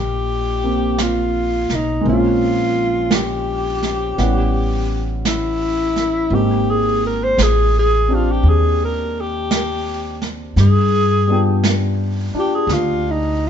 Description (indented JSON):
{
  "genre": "jazz ballad",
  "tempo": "56 BPM",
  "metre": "4/4",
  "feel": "swing 68% on 8ths",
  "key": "unclear",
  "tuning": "A4 = 440 Hz",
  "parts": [
    { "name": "breathy alto saxophone", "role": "melody", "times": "0.0-13.5 s", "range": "Eb4 to C5", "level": "-19 LUFS", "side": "left 1 dB", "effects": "none" },
    { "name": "warm concert grand piano", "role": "accompaniment", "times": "0.0-13.5 s", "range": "G3 to G5", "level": "-23 LUFS", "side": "equal", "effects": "none" },
    { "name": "upright bass", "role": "bass", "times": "0.0-13.5 s", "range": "Ab1 to G2", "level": "-19 LUFS", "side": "equal", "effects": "none" },
    { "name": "jazz brush drum kit", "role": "drums", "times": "1.0-13.5 s", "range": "brushed snare drum, hi-hat, snare drum", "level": "-24 LUFS", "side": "right 4 dB", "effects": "none" }
  ],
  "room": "moderate studio reverb, RT60 0.9 s",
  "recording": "band playing live in one room, nothing above 7.6 kHz",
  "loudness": "-15 LUFS",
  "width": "side -8 dB against mid",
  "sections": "0.0-13.5 A section",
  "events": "none",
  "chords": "0.0 Ebmaj9; 2.0 Bbm7; 4.2 A13; 6.3 Abmaj9; 10.6 G7"
}